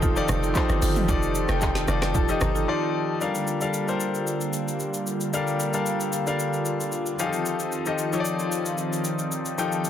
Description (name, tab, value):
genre	amapiano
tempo	113 BPM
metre	4/4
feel	straight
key	G minor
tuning	A4 = 439 Hz
part	clear concert grand piano	accompaniment	0.0-9.9 s	F3 to C6	-27 LUFS	left 5 dB	none
part	warm analog pad	sustained chords	0.0-9.9 s	D3 to G4	-29 LUFS	right 1 dB	lush chorus
part	marimba with medium mallets	stabs	0.0-2.6 s	Eb4 to A4	-31 LUFS	right 9 dB	tape echo
part	hollow log drum bass	bass	0.0-2.7 s	F1 to G1	-26 LUFS	equal	none
part	deep house drum kit	drums	0.0-9.9 s	handclaps, hi-hat, kick drum, rim click, shaker, snare drum, toms	-29 LUFS	equal	none
part	congas and bongos	percussion	0.0-2.5 s	none	-34 LUFS	right 3 dB	none
room	light reverb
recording	dense, heavily limited modern master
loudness	-23 LUFS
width	side -10 dB against mid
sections	0.0-3.2 A section; 3.2-9.9 B section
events	drop 0.0-3.2; grand piano fill 1.6-3.2; break 2.7-3.2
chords	0.0 F7; 3.2 Gm9; 7.2 F7